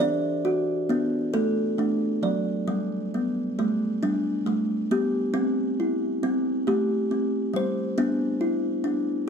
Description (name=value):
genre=children's music, lullaby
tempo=45 BPM (dotted quarters)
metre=6/8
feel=straight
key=G major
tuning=A4 = 440 Hz
part: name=kalimba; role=solo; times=0.0-9.3 s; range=F#3 to D5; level=-23 LUFS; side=equal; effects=none
room=light reverb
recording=none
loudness=-23 LUFS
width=side -6 dB against mid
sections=0.0-2.7 A section; 2.7-9.3 B section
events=none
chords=0.0 D; 2.7 G; 5.4 C; 8.0 Dsus2